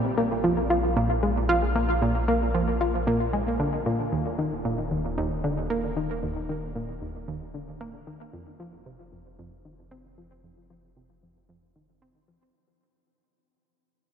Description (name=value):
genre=ambient, sequencer-driven space music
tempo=114 BPM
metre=4/4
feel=straight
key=F dorian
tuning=A4 = 440 Hz
part: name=round analog bass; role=bass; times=0.0-12.5 s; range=Eb1 to Bb1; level=-32 LUFS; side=equal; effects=none
part: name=analog pluck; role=riff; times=0.2-12.4 s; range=Eb2 to F4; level=-25 LUFS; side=equal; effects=chorus, tape echo
room=wet huge ambient reverb, RT60 8.5 s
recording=dark, warm production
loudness=-24 LUFS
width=side -8 dB against mid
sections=0.0-12.5 A section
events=fade-out 0.0-12.5; filter sweep on synth arpeggio sound 0.0-12.5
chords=0.0 Bb5; 4.1 Eb5; 8.3 F5